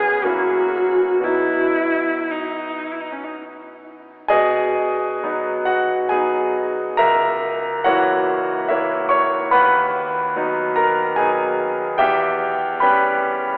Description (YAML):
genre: classical, romantic duo for viola and grand piano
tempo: 56-74 BPM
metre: 3/4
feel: rubato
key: B major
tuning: A4 = 440 Hz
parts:
  - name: warm viola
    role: melody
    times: 0.0-3.3 s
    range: C#4 to G#4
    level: -22 LUFS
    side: equal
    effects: none
  - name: bright concert grand piano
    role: accompaniment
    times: 0.0-13.6 s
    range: C#2 to C#6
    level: -20 LUFS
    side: equal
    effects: none
room: wet cathedral reverb, RT60 4.5 s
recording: recorded in a church or concert hall, telephone sound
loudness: -19 LUFS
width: mono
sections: 0.0-4.3 A section; 4.3-13.6 B section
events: none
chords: 0.3 F#7; 1.3 B; 7.0 A#dim/C#; 9.5 B/D#; 12.0 C#m7b5/E